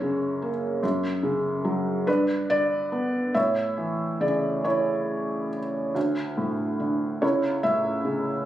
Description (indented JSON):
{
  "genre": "classical, lyrical solo piano",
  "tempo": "45-50 BPM (dotted quarters)",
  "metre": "6/8",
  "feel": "rubato",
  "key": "unclear",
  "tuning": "A4 = 440 Hz",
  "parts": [
    { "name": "felt-muted upright piano", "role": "solo", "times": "0.0-8.5 s", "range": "C#2 to E5", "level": "-23 LUFS", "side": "equal", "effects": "none" }
  ],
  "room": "moderate recital hall reverb, RT60 1.7 s",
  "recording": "recorded on a phone in the room, studio reverb, compression",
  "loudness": "-23 LUFS",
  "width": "side -12 dB against mid",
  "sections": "0.0-8.5 A section",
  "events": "none",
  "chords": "0.0 F#; 0.8 F#5; 2.1 G; 3.3 A; 6.0 D5; 7.2 A/C#"
}